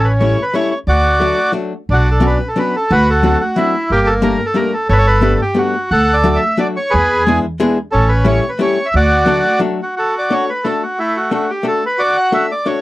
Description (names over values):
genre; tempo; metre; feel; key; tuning
musette waltz; 179 BPM; 3/4; straight; D major; A4 = 441 Hz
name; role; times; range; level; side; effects
bandoneon; melody; 0.0-12.8 s; A3 to F#5; -14 LUFS; right 1 dB; none
upright bass; bass; 0.0-9.4 s; G1 to E2; -16 LUFS; right 1 dB; none
archtop guitar, miked and amplified; accompaniment; 0.2-12.8 s; F#3 to A4; -17 LUFS; left 3 dB; none
room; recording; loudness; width
light reverb; dry, close 1970s-style studio recording; -12 LUFS; side -17 dB against mid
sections
0.0-1.9 A section; 1.9-10.0 A section; 10.0-12.8 B section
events
none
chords
0.0 A7; 0.9 D; 1.9 Bmadd9; 2.9 D7; 3.9 Gmadd9; 4.9 Gadd9; 5.9 D; 6.9 E7; 7.9 A7; 8.9 D; 10.0 D/A